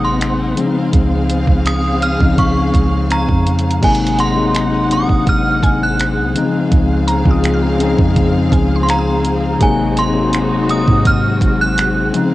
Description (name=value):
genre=contemporary R&B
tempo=83 BPM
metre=4/4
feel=straight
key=Db major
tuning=A4 = 440 Hz
part: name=synth chime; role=melody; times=0.0-12.1 s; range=Ab5 to Gb6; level=-19 LUFS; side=right 2 dB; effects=ensemble chorus, tremolo, cassette tape, tape echo
part: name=tine electric piano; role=accompaniment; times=0.0-12.3 s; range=C3 to F4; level=-16 LUFS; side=left 3 dB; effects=medium stereo tremolo, cassette tape
part: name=warm studio string section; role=sustained chords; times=0.0-12.3 s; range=Db3 to Gb5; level=-22 LUFS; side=equal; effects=cassette tape
part: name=soft 808-style bass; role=bass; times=0.0-12.1 s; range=Gb1 to Ab2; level=-19 LUFS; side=right 1 dB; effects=none
part: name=detuned 8-bit digital drum machine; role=drums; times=0.2-12.3 s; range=crash cymbal, finger snaps, hi-hat, kick drum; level=-16 LUFS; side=right 1 dB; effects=cassette tape
part: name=mallet-like synth pluck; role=texture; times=4.2-10.3 s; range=F5 to F6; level=-27 LUFS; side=right 1 dB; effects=chorus, phaser, cassette tape, tape echo
room=moderate booth ambience, RT60 0.2 s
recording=home recording on cassette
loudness=-12 LUFS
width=side -16 dB against mid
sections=0.0-3.8 A section; 3.8-12.3 B section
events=none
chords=0.0 Ab7; 0.6 Dbmaj7; 3.8 Ab7; 6.4 Dbmaj7; 9.6 Ab7